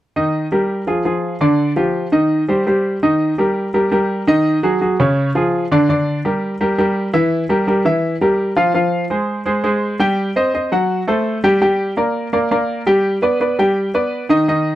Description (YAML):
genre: latin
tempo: 168 BPM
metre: 4/4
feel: straight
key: unclear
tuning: A4 = 439 Hz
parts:
  - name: bright baby grand piano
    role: solo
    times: 0.2-14.8 s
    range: Db3 to G5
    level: -14 LUFS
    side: equal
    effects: none
room: light reverb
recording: dry, close 1970s-style studio recording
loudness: -14 LUFS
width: side -14 dB against mid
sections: 0.2-3.0 A section; 3.0-14.5 B section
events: none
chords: 0.2 Eb; 0.9 Ddim; 1.6 G5; 2.3 Cm; 3.0 Eb; 4.5 Ab5; 5.2 Db; 5.9 Gm6/D; 7.3 Edim; 8.7 Fm; 10.2 Cm; 10.9 F#dim; 11.6 Gm; 13.0 G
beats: | 0.16 0.52 0.87 1.23 | 1.59 1.95 2.31 2.66 | 3.02 3.38 3.74 4.09 | 4.45 4.81 5.17 5.53 | 5.88 6.24 6.60 6.96 | 7.32 7.67 8.03 8.39 | 8.75 9.11 9.46 9.82 | 10.18 10.54 10.90 11.26 | 11.61 11.97 12.33 12.69 | 13.05 13.40 13.76 14.12 | 14.48